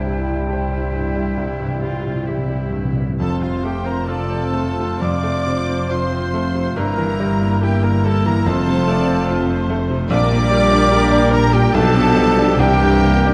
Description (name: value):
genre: classical, romantic movement for piano and orchestra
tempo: 62-75 BPM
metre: 4/4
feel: rubato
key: F major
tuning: A4 = 443 Hz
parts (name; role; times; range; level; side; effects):
- bright baby grand piano; melody; 0.0-13.3 s; Bb1 to A5; -23 LUFS; equal; none
- clear studio violin section; melody; 0.0-13.3 s; C5 to D6; -33 LUFS; equal; none
- bright silver concert flute; second line; 0.0-13.3 s; F5 to D6; -28 LUFS; equal; none
- clear oboe; second line; 0.0-13.3 s; F4 to D5; -32 LUFS; equal; none
- mellow clarinet; second line; 0.0-13.3 s; E4 to D5; -29 LUFS; equal; none
- rich studio violin section; second line; 0.0-13.3 s; F4 to D5; -31 LUFS; equal; none
- mellow bassoon; accompaniment; 0.0-2.8 s; G3; -32 LUFS; equal; none
- rich studio viola section; accompaniment; 0.0-13.3 s; E4 to D5; -31 LUFS; equal; none
- mellow French horn section; sustained chords; 0.0-13.3 s; E3 to E4; -28 LUFS; equal; none
- rich studio cello section; bass; 0.0-13.3 s; F2 to F4; -26 LUFS; equal; none
- rich studio double bass section; bass; 0.0-13.3 s; F1 to C2; -26 LUFS; equal; none
- timpani; percussion; 0.0-9.7 s; F2 to C3; -29 LUFS; equal; none
- mellow trumpet; stabs; 3.2-13.3 s; E4 to Bb4; -30 LUFS; equal; none
room: moderate scoring stage reverb, RT60 1.8 s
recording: dark, warm production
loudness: -17 LUFS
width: mono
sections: 0.0-3.2 A section; 3.2-13.3 B section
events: timpani fill 0.0-3.2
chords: 0.0 C; 3.2 F; 6.8 Edim/G; 8.5 F; 10.1 Gm/Bb; 11.7 G7/B; 12.6 C9